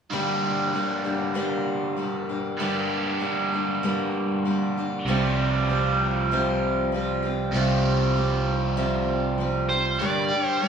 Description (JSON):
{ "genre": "rock", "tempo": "97 BPM", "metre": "4/4", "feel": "straight", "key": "G minor", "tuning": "A4 = 440 Hz", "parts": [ { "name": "picked steel-string acoustic guitar", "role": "accompaniment", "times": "0.1-10.7 s", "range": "G2 to G4", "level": "-27 LUFS", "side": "left 3 dB", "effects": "none" }, { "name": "biting overdriven guitar", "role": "riff", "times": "0.1-10.7 s", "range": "G2 to G4", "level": "-26 LUFS", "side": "right 2 dB", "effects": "phaser" }, { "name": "fingered electric bass", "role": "bass", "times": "5.0-10.0 s", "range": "C2", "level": "-26 LUFS", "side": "right 3 dB", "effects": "none" }, { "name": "dark smooth lead guitar", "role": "melody", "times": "9.7-10.7 s", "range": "C5 to D5", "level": "-24 LUFS", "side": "right 2 dB", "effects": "overdrive" } ], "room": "wet large studio reverb, RT60 1.3 s", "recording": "band playing live in one room, small room ambience", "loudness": "-22 LUFS", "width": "side -7 dB against mid", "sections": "0.1-10.0 A section", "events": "none", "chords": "0.1 Gm; 5.1 Csus4; 10.0 Gm", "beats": "| 0.12 0.74 1.36 1.98 | 2.59 3.21 3.83 4.45 | 5.06 5.68 6.30 6.91 | 7.53 8.15 8.76 9.38 | 9.99 10.61" }